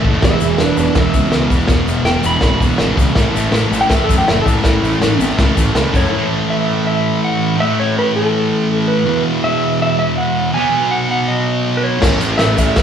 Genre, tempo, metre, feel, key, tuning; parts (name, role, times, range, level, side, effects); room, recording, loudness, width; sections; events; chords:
garage rock duo or trio; 163 BPM; 4/4; straight; A4 = 435 Hz
thick fuzz guitar; riff; 0.0-12.8 s; E2 to B3; -16 LUFS; right 1 dB; distortion
fuzz picked electric bass; bass; 0.0-6.0, 12.0-12.8 s; E1 to F#2; -20 LUFS; equal; overdrive, tube saturation
crunchy breakbeat drum kit; drums; 0.0-6.0, 12.0-12.8 s; crash cymbal, kick drum, ride cymbal, snare drum; -16 LUFS; equal
clean lap steel guitar; melody; 0.2-12.8 s; D4 to B5; -18 LUFS; right 1 dB
tube shaker; percussion; 0.2-6.1, 12.0-12.8 s; -34 LUFS; left 6 dB
moderate large studio reverb, RT60 1.2 s; band playing live in one room; -12 LUFS; side -8 dB against mid
0.0-6.1 A section; 6.1-12.8 B section
electric slide guitar solo 0.0-6.1
0.2 E5; 3.2 A5; 9.1 E5; 10.5 B; 12.0 A5